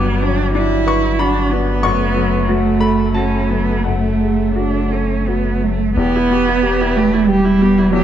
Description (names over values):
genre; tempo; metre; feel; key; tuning
neoclassical piano and strings; 84-95 BPM; 3/4; rubato; E dorian; A4 = 436 Hz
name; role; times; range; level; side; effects
rich cello; second line; 0.0-8.0 s; F#3 to E4; -17 LUFS; right 4 dB; none
clear grand piano; accompaniment; 0.0-8.0 s; E2 to D6; -20 LUFS; left 5 dB; none
rich viola; accompaniment; 0.0-8.0 s; F#3 to G4; -22 LUFS; right 3 dB; none
punchy sub bass; bass; 0.0-8.0 s; E1 to G1; -21 LUFS; left 1 dB; none
room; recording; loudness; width
moderate scoring stage reverb, RT60 1.7 s; dark, warm production; -13 LUFS; side -10 dB against mid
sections
0.0-6.0 A section; 6.0-8.0 B section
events
none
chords
0.0 Gmaj7; 1.8 F#m; 6.0 Em